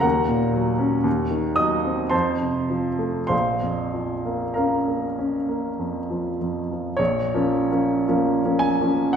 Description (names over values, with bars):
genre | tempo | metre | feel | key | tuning
classical, romantic nocturne for solo piano | 47-60 BPM | 3/4 | rubato | Bb minor | A4 = 441 Hz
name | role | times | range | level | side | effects
warm baby grand piano | solo | 0.0-9.2 s | Bb1 to Eb6 | -20 LUFS | equal | none
room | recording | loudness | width
wet recital hall reverb, RT60 1.5 s | none | -20 LUFS | side -7 dB against mid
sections
0.0-7.0 A section; 7.0-9.2 B section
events
none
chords
0.0 Ebm7; 1.1 Cdim/Eb; 2.1 F; 3.3 Bbm